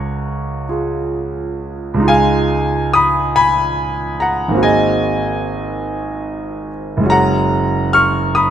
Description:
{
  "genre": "classical, impressionist solo piano",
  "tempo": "42-50 BPM (dotted quarters)",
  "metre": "6/8",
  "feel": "rubato",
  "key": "Db major",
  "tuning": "A4 = 439 Hz",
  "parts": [
    { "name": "clear concert grand piano", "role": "solo", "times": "0.0-8.5 s", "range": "Gb1 to F6", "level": "-14 LUFS", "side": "equal", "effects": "none" }
  ],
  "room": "light reverb",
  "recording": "close, detailed microphones",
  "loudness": "-14 LUFS",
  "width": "side -10 dB against mid",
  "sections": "0.0-2.1 A section; 2.1-8.5 B section",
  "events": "none",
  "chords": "0.0 Db; 2.1 Dbadd9; 4.6 Ab9; 7.1 Gbadd9",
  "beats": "0.69 | 2.09 3.37 | 4.63 5.88 | 7.11 8.36"
}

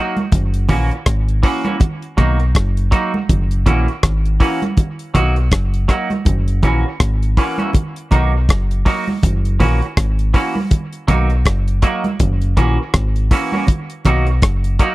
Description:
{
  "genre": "roots reggae",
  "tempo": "81 BPM",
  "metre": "4/4",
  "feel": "swing 58% on 16ths",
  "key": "B major",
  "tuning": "A4 = 442 Hz",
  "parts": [
    { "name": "semi-hollow electric guitar", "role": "accompaniment", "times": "0.0-14.9 s", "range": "E3 to F#4", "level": "-21 LUFS", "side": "right 2 dB", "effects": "lush chorus, tape echo" },
    { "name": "damped 70s drum kit", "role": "drums", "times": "0.2-14.9 s", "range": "hi-hat, kick drum, rim click", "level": "-14 LUFS", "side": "equal", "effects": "none" },
    { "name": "congas", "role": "percussion", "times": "0.2-14.2 s", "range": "none", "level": "-23 LUFS", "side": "right 2 dB", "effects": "none" },
    { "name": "deep dub fingered electric bass", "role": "bass", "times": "0.3-14.8 s", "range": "F#1 to B1", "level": "-16 LUFS", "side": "equal", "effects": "none" }
  ],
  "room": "little or no reverb",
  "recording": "dry, close 1970s-style studio recording",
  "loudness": "-14 LUFS",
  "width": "side -18 dB against mid",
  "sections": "0.0-14.9 A section",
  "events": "none",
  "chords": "0.3 F#7; 1.8 Bmaj7; 3.3 F#7; 4.8 Bmaj7; 6.3 F#7; 7.7 Bmaj7; 9.2 F#7; 10.7 Bmaj7; 12.2 F#7; 13.7 Bmaj7",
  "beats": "0.32 1.06 | 1.81 2.55 3.29 4.03 | 4.78 5.52 6.26 7.00 | 7.75 8.49 9.23 9.97 | 10.71 11.46 12.20 12.94 | 13.68 14.42"
}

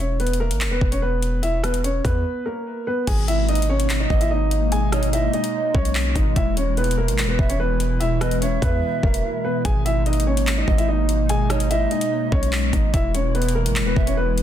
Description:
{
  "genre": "hip hop, drill",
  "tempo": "146 BPM",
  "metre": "4/4",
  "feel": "half-time",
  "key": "G# minor",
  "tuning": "A4 = 440 Hz",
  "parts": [
    { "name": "dark concert grand piano", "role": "melody", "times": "0.0-14.4 s", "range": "A#3 to G#5", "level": "-24 LUFS", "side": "equal", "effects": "low-pass filter, ping-pong delay" },
    { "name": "hard-hitting 808-style bass", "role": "bass", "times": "0.0-14.4 s", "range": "E1 to E2", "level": "-22 LUFS", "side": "equal", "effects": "none" },
    { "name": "drill drum kit", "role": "drums", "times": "0.2-14.4 s", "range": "crash cymbal, handclaps, hi-hat, kick drum, rim click", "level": "-24 LUFS", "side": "equal", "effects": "none" },
    { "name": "hollow soft pad", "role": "sustained chords", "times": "3.1-14.4 s", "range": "B2 to E4", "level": "-26 LUFS", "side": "equal", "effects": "ensemble chorus" },
    { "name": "polished pan flute", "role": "second line", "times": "4.1-14.2 s", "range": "C#5 to E5", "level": "-30 LUFS", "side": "right 5 dB", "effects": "ping-pong delay" }
  ],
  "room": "little or no reverb",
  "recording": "dense, heavily limited modern master",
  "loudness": "-18 LUFS",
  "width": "side -11 dB against mid",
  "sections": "0.0-3.1 A section; 3.1-14.4 B section",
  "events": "break 2.3-3.1, 9.2-9.7",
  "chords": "0.0 E5; 3.1 G#madd9; 6.4 E; 9.7 G#madd9; 12.9 E",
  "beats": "0.20 0.61 1.02 | 1.43 1.84 2.25 2.66 | 3.07 3.48 3.90 4.31 | 4.72 5.13 5.54 5.95 | 6.36 6.77 7.18 7.59 | 8.01 8.42 8.83 9.24 | 9.65 10.06 10.47 10.88 | 11.29 11.70 12.12 12.53 | 12.94 13.35 13.76 14.17"
}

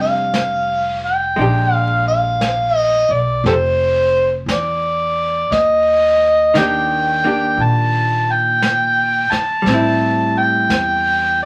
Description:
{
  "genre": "jazz ballad",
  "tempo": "58 BPM",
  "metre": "4/4",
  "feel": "swing 67% on 8ths",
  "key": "Bb major",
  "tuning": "A4 = 440 Hz",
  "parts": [
    { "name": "overdriven harmonica", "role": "melody", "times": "0.0-11.5 s", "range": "G4 to A5", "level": "-17 LUFS", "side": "equal", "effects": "none" },
    { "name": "archtop guitar, miked and amplified", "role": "accompaniment", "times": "0.0-11.5 s", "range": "Eb3 to G4", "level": "-24 LUFS", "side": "equal", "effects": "none" },
    { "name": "upright bass", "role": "bass", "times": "0.0-11.5 s", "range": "F1 to Bb2", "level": "-25 LUFS", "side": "equal", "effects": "none" },
    { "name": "vintage brush drum kit", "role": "drums", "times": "0.3-11.5 s", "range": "brushed snare drum, hi-hat, snare drum", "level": "-28 LUFS", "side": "equal", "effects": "none" }
  ],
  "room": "wet studio ambience, RT60 0.5 s",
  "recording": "vinyl crackle",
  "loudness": "-16 LUFS",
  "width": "mono",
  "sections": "0.0-11.5 A section",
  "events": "none",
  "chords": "0.0 Bb69 (rootless); 1.4 Bb13; 5.5 Ebmaj7; 9.6 Am7",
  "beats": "0.34 | 1.37 2.40 3.44 4.47 | 5.51 6.54 7.58 8.61 | 9.65 10.69"
}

